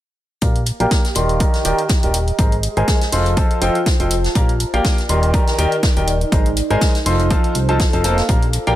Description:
piano house; 122 BPM; 4/4; swing 55% on 16ths; A4 = 442 Hz
clear upright piano; riff; 0.4-8.8 s; Eb3 to C6; -20 LUFS; equal; sidechain pumping, low-pass filter, dub echo
fat analog bass; bass; 0.4-8.7 s; Eb1 to C2; -19 LUFS; equal; sidechain pumping
electronic hi-hat; drums; 0.4-8.8 s; -27 LUFS; right 1 dB; overdrive
electronic kick drum; drums; 0.4-8.4 s; -17 LUFS; equal; overdrive
unplugged drum kit; drums; 0.4-8.7 s; hi-hat, snare drum; -27 LUFS; left 2 dB; sidechain pumping on hats, high-pass filter on hats, high-pass filter on snare, high-pass filter on room
warbly tape-like pad; texture; 1.1-8.8 s; Eb4 to Bb5; -26 LUFS; right 1 dB; chorus, built-in reverb, sidechain pumping
light reverb, studio reverb; -14 LUFS; side -14 dB against mid
0.4-8.8 A section
filter sweep on analog synth bass 0.4-8.8; filter sweep on upright piano 0.4-8.8
0.4 Bb6; 1.2 Ebmaj7; 2.4 Abadd9; 3.1 F7; 4.4 Bb6; 5.1 Ebmaj7; 6.3 Abadd9; 7.1 F7

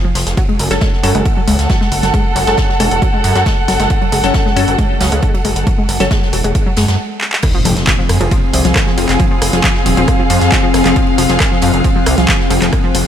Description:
driving peak-time techno; 136 BPM; 4/4; straight; A4 = 445 Hz
analog pluck; riff; 0.0-13.0 s; F3 to Ab3; -19 LUFS; equal; chorus, tube saturation, sidechain pumping, diffuse ambient delay
muted chamber string section; texture; 0.0-13.1 s; C4 to Gb5; -19 LUFS; equal; sidechain pumping
gritty driven synth bass; bass; 0.2-13.0 s; Eb1 to Gb2; -16 LUFS; equal; sidechain pumping
natural country drum kit; drums; 0.2-13.1 s; ride cymbal, snare drum; -26 LUFS; right 1 dB; sidechain pumping on cymbals, high-pass filter on cymbals, small room reverb, high-pass filter on snare, high-pass filter on room
techno drum kit; drums; 0.2-13.0 s; crash cymbal, handclaps, hi-hat, ride cymbal, rim click; -19 LUFS; equal; overdrive, sidechain pumping on hats, small room reverb, sidechain pumping on cymbals
electronic kick drum; drums; 0.4-12.8 s; -15 LUFS; equal; small room reverb
filtered dub chord stab; stabs; 0.7-6.1 s; Gb3 to A4; -20 LUFS; left 3 dB; phaser, lush chorus, sidechain pumping, diffuse ambient delay
metallic inharmonic drone; drone; 8.1-13.1 s; F3 to C4; -19 LUFS; left 4 dB; chorus, built-in reverb, sidechain pumping
impact; sound effects; 7.4-9.2 s; -23 LUFS; equal
moderate lush hall reverb, RT60 1.8 s, studio ambience; dreamy mix soaked in reverb; -11 LUFS; side -9 dB against mid
0.0-7.4 A section; 7.4-13.1 B section
stop 7.0-7.4; drum fill 7.2; drop 7.4-13.1; impact 7.4-9.2
0.4 Gbm; 7.4 Fm

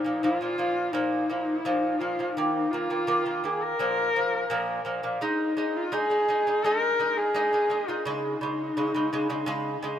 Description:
mongolian traditional, Mongolian folk; 84 BPM; 4/4; straight; A4 = 442 Hz
warm horsehead fiddle; melody; 0.0-10.0 s; Eb4 to Bb4; -26 LUFS; left 1 dB
lute; arpeggios; 0.0-10.0 s; Bb2 to Eb4; -28 LUFS; right 1 dB
moderate huge ambient reverb, RT60 4.0 s; -24 LUFS; side -10 dB against mid
0.0-5.2 A section; 5.2-10.0 B section
0.0 Bb5; 2.4 Eb5; 3.8 Bb5; 5.2 Ab5; 8.1 Db5

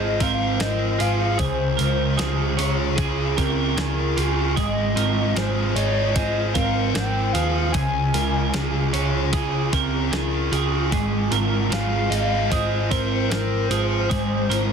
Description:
rock, shoegaze and dream pop; 76 BPM; 4/4; straight; Db major; A4 = 440 Hz
pure sine lead; melody; 0.0-14.7 s; Bb4 to Ab5; -27 LUFS; left 3 dB; chorus, slapback echo
twelve-string electric guitar; arpeggios; 0.0-14.7 s; Ab4 to Bb4; -29 LUFS; right 11 dB; lush chorus, slapback echo
overdriven semi-hollow guitar; riff; 0.0-14.7 s; Db3 to Eb5; -26 LUFS; right 13 dB; reverse reverb
thick fuzz guitar; riff; 0.0-14.7 s; Db3 to Eb5; -27 LUFS; left 13 dB; distortion, lush chorus
hollow-body short-scale picked electric bass; bass; 0.0-14.7 s; Ab1 to Eb2; -24 LUFS; left 1 dB
crisp 8-bit digital drum machine; drums; 0.2-14.7 s; hi-hat, kick drum, snare drum; -26 LUFS; equal
digital ambience; dense, heavily limited modern master; -19 LUFS; side -6 dB against mid
0.0-14.7 A section
0.0 Ab6; 1.4 Dbmaj7; 4.6 Ab6; 7.7 Dbmaj7; 10.9 Ab6

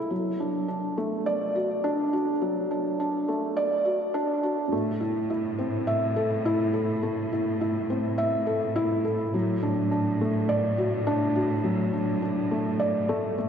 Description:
piano and strings electronica; 104 BPM; 4/4; straight; A4 = 440 Hz
felt-muted upright piano; riff; 0.0-13.5 s; F#3 to E5; -25 LUFS; equal; digital delay
rich studio cello section; bass; 4.7-13.5 s; A2; -30 LUFS; equal; tube saturation
wet concert hall reverb, RT60 2.4 s; high-pass filter, nothing above 10.3 kHz; -24 LUFS; side -8 dB against mid
0.0-4.7 A section; 4.7-13.5 B section
build-up 0.0-4.7; filter sweep 0.0-4.7; drop 4.7-13.5
0.1 D; 4.7 Am; 9.3 D/A

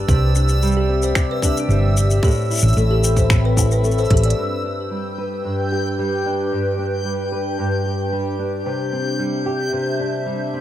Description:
folktronica; 112 BPM; 4/4; straight; G major; A4 = 440 Hz
warbly tape-like pad; sustained chords; 0.0-10.6 s; C4 to B5; -26 LUFS; left 1 dB; chorus, built-in reverb, phaser
nylon-string guitar; arpeggios; 0.0-10.6 s; G2 to B4; -22 LUFS; equal; low-pass filter, tape echo
hollow-body short-scale fingered electric bass; bass; 0.0-4.3 s; G1 to C2; -16 LUFS; equal
backwards swelling texture; texture; 0.0-10.6 s; E6 to G6; -30 LUFS; equal; built-in reverb
music box; second line; 0.1-4.4 s; D4 to G5; -27 LUFS; right 2 dB; tape echo
electronic kick drum; drums; 0.1-4.2 s; -18 LUFS; equal; small room ambience
organic electronic drum kit; drums; 0.1-4.4 s; finger snaps, hi-hat, shaker; -25 LUFS; left 2 dB; small room ambience
light reverb; -17 LUFS; side -12 dB against mid
0.0-4.4 A section; 4.4-10.6 B section
drum fill 4.1; filter sweep on nylon-string guitar 4.4-10.6
0.1 Cadd9; 2.2 Amadd9; 4.4 G; 8.7 Cadd9

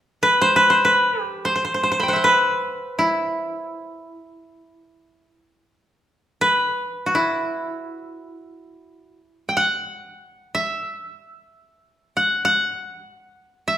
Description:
japanese traditional, Japanese chamber music; free time; E hirajoshi; A4 = 440 Hz
koto; solo; 0.2-13.8 s; E4 to B5; -18 LUFS; equal
moderate recital hall reverb, RT60 1.3 s; recorded in a church or concert hall; -18 LUFS; side -11 dB against mid
0.0-8.7 A section; 8.7-13.8 A section

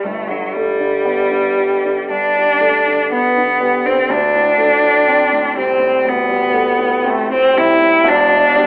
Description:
classical, impressionist duo for cello and grand piano; 60 BPM; 4/4; rubato; G major; A4 = 440 Hz
rich cello; melody; 0.0-8.7 s; F#3 to E4; -15 LUFS; equal
dark concert grand piano; accompaniment; 0.0-8.7 s; E1 to C4; -22 LUFS; equal
moderate recital hall reverb, RT60 1.6 s; telephone sound; -15 LUFS; mono
0.1-8.7 A section
0.1 Gadd9; 4.1 D7sus4; 8.1 Em7

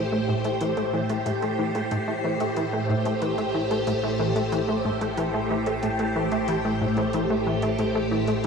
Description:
ambient, sequencer-driven space music; 92 BPM; 4/4; straight; A minor; A4 = 439 Hz
phased string machine; sustained chords; 0.0-8.5 s; A2 to C5; -24 LUFS; equal; ensemble chorus, phaser, shimmer reverb
plucky analog bass; riff; 0.0-8.5 s; A2 to A3; -27 LUFS; left 1 dB; wide subtle chorus, ping-pong delay, shimmer reverb
round analog bass; bass; 0.0-8.5 s; A1; -43 LUFS; equal
electronic hi-hat and bongos; percussion; 0.4-8.5 s; -45 LUFS; right 2 dB; ping-pong delay
wet plate reverb, RT60 3.7 s; dreamy mix soaked in reverb; -23 LUFS; side -5 dB against mid
0.0-8.5 A section
0.0 Am7

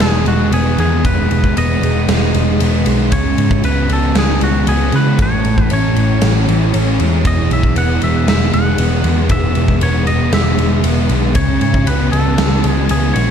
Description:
rock, shoegaze and dream pop; 116 BPM; 4/4; straight; E major; A4 = 440 Hz
twangy electric guitar; melody; 0.0-13.3 s; F#4 to F#5; -22 LUFS; left 1 dB; digital delay
overdriven electric guitar; riff; 0.0-13.3 s; A2 to C#4; -18 LUFS; right 11 dB; reverse reverb
thick fuzz guitar; riff; 0.0-13.3 s; E2 to C#4; -19 LUFS; left 12 dB; distortion, ensemble chorus
vintage muted picked electric bass; bass; 0.0-13.3 s; E1 to C#3; -16 LUFS; equal
big rock drum kit; drums; 0.0-13.3 s; kick drum, ride cymbal, snare drum; -19 LUFS; equal
light reverb; dark, warm production; -12 LUFS; side -8 dB against mid
0.0-13.3 A section
0.0 Emaj7; 3.1 C#m7; 5.2 Amaj7; 7.2 Emaj7; 11.4 C#m7

